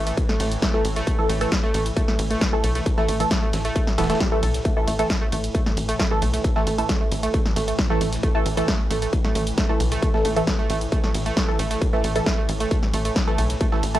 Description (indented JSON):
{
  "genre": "driving peak-time techno",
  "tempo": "134 BPM",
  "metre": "4/4",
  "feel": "straight",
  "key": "unclear",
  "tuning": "A4 = 439 Hz",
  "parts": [
    { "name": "tight sequencer bass", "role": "bass", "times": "0.0-14.0 s", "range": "E1 to B1", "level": "-26 LUFS", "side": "equal", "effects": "sidechain pumping" },
    { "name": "swarming drone", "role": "drone", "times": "0.0-14.0 s", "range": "A2 to E3", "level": "-33 LUFS", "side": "left 1 dB", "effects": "built-in reverb, sidechain pumping" },
    { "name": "analog pluck", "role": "riff", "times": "0.1-14.0 s", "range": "G3 to A4", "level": "-28 LUFS", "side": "right 2 dB", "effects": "chorus, tube saturation, sidechain pumping, analog delay" },
    { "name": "punchy analog drum machine", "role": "drums", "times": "0.1-14.0 s", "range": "hi-hat, ride cymbal, snare drum", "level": "-28 LUFS", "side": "equal", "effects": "sidechain pumping on hats, sidechain pumping on cymbals" },
    { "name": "dusty soul sampler-style drum kit", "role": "drums", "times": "0.2-13.9 s", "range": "hi-hat, snare drum", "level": "-40 LUFS", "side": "equal", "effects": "none" },
    { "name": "electronic kick drum", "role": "drums", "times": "0.2-13.7 s", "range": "none", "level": "-24 LUFS", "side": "equal", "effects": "distortion" },
    { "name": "filtered dub chord stab", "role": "stabs", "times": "0.7-14.0 s", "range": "E3 to A4", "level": "-26 LUFS", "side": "right 1 dB", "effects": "phaser, wide subtle chorus, sidechain pumping, analog delay" }
  ],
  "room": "light reverb, digital ambience",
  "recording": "dry, gritty hardware recording, cassette tape",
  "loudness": "-19 LUFS",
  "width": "side -14 dB against mid",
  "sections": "0.0-14.0 A section",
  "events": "none",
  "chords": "0.0 A5",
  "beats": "0.17 0.62 | 1.07 1.52 1.97 2.41 | 2.86 3.31 3.76 4.20 | 4.65 5.10 5.55 6.00 | 6.44 6.89 7.34 7.79 | 8.23 8.68 9.13 9.58 | 10.03 10.47 10.92 11.37 | 11.82 12.26 12.71 13.16 | 13.61"
}